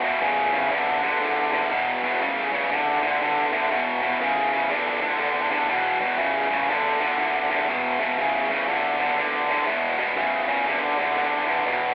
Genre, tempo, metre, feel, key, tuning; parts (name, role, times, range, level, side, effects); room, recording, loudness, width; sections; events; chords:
rock; 121 BPM; 4/4; swing 63% on 8ths; A4 = 441 Hz
tight distorted guitar; solo; 0.0-11.9 s; E2 to D3; -20 LUFS; equal; distortion, slapback echo
light reverb; live gig heard through the venue's PA, club reverb, telephone sound; -20 LUFS; side -20 dB against mid
0.0-11.9 A section
0.0 E5